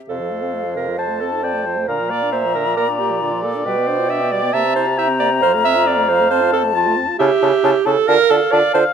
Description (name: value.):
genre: quick classical-period movement for wind quintet.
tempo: 135 BPM.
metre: 4/4.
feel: straight.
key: F major.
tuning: A4 = 440 Hz.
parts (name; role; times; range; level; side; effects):
concert flute; melody; 0.1-8.8 s; F5 to Bb5; -21 LUFS; left 9 dB; none.
clear French horn; accompaniment; 0.1-8.8 s; C3 to G4; -28 LUFS; equal; none.
warm clarinet; accompaniment; 0.1-8.8 s; F4 to E5; -18 LUFS; right 8 dB; none.
warm bassoon; bass; 0.1-8.8 s; F2 to D3; -21 LUFS; right 2 dB; none.
warm oboe; second line; 1.0-8.9 s; D5 to A5; -23 LUFS; left 4 dB; none.
room: light reverb.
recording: close, detailed microphones.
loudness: -15 LUFS.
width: side -7 dB against mid.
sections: 0.1-8.9 A section.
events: none.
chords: 0.1 F; 1.0 F7; 1.9 Bb; 3.7 G7/B; 4.5 C7; 5.4 F; 7.2 A7/C#; 8.1 Dm.